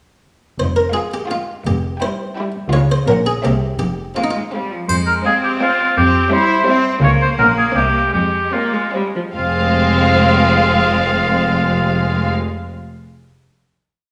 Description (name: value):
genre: cinematic, playful, whimsical film cue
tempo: 142-170 BPM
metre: 3/4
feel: straight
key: F minor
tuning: A4 = 440 Hz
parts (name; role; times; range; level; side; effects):
- buff-stop harpsichord; melody; 0.6-4.5 s; Eb4 to Db5; -23 LUFS; equal; none
- clear chamber cello section; bass; 0.6-12.3 s; F2 to E4; -24 LUFS; equal; none
- rich studio double bass section; bass; 0.6-12.3 s; F1 to F2; -21 LUFS; equal; none
- rich chamber violin section; melody; 0.9-12.3 s; E5 to G5; -26 LUFS; equal; none
- rich chamber violin section; second line; 0.9-12.3 s; C4 to F4; -26 LUFS; equal; none
- rich chamber viola section; accompaniment; 0.9-12.3 s; F3 to Bb3; -25 LUFS; equal; none
- clear oboe; second line; 4.9-12.3 s; F4 to Db5; -19 LUFS; equal; none
- triangle; percussion; 4.9-5.6 s; none; -32 LUFS; equal; none
room: moderate scoring stage reverb, RT60 1.5 s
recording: studio ambience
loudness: -16 LUFS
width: mono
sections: 0.6-4.9 A section; 4.9-9.3 A section; 9.3-11.9 final chord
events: slowing down 6.5-9.3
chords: 0.6 Fm; 1.7 C/F; 2.7 Db; 3.1 Gb/Bb; 3.4 C7; 3.8 Fm; 6.0 C/F; 7.0 Db; 7.4 Gb/Bb; 7.8 C7; 8.1 Fm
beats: | 0.59 0.95 1.31 | 1.66 2.02 2.37 | 2.72 3.08 3.44 | 3.80 4.16 4.53 | 4.89 5.25 5.60 | 5.96 6.32 6.67 | 7.03 7.39 7.76 | 8.14 8.53 8.93 | 9.35 9.77 10.19 | 10.61 11.03 11.45